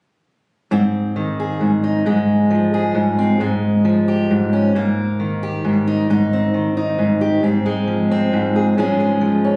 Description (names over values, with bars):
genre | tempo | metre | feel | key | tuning
folk | 134 BPM | 3/4 | straight | Ab major | A4 = 442 Hz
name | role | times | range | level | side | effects
fingerpicked steel-string acoustic guitar | solo | 0.7-9.6 s | Ab2 to Ab4 | -18 LUFS | equal | none
room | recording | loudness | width
light reverb | recorded on a phone in the room, club reverb | -18 LUFS | mono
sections
0.7-6.1 A section; 6.1-9.6 B section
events
none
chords
0.7 Ab; 2.1 Fm/Ab; 3.4 Fmadd9/Ab; 4.7 Eb/Ab; 6.1 Ab; 7.4 Fm/Ab; 8.8 Db/Ab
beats
| 0.71 1.16 1.61 | 2.06 2.51 2.95 | 3.40 3.85 4.30 | 4.75 5.19 5.64 | 6.09 6.54 6.98 | 7.43 7.88 8.33 | 8.77 9.22